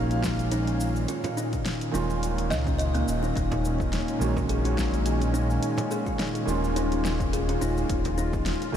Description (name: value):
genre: organic downtempo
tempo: 106 BPM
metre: 4/4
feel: swing 55% on 16ths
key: Eb minor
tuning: A4 = 441 Hz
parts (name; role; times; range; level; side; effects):
- felt-muted upright piano; accompaniment; 0.0-8.8 s; Bb2 to F5; -33 LUFS; right 4 dB; sidechain pumping, ping-pong delay, shimmer reverb
- warm analog pad; sustained chords; 0.0-8.8 s; Bb2 to F5; -30 LUFS; equal; wide subtle chorus, sidechain pumping, shimmer reverb
- kalimba; arpeggios; 0.0-8.8 s; Bb3 to Eb5; -31 LUFS; left 1 dB; ping-pong delay, shimmer reverb
- smooth synth bass; bass; 0.0-8.8 s; Eb1 to Db2; -28 LUFS; equal; none
- deep house drum kit; drums; 0.1-8.7 s; hi-hat, shaker, snare drum; -36 LUFS; equal; overdrive
- electronic kick drum; drums; 0.2-8.4 s; none; -33 LUFS; equal; overdrive
- frame drum; percussion; 1.2-8.2 s; none; barely audible; none; none
room: moderate huge ambient reverb, RT60 7.8 s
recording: dreamy mix soaked in reverb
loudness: -24 LUFS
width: side -9 dB against mid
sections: 0.0-8.8 A section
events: none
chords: 0.0 Eb9sus4; 1.1 Bbm; 3.4 Ebm; 5.6 Eb9sus4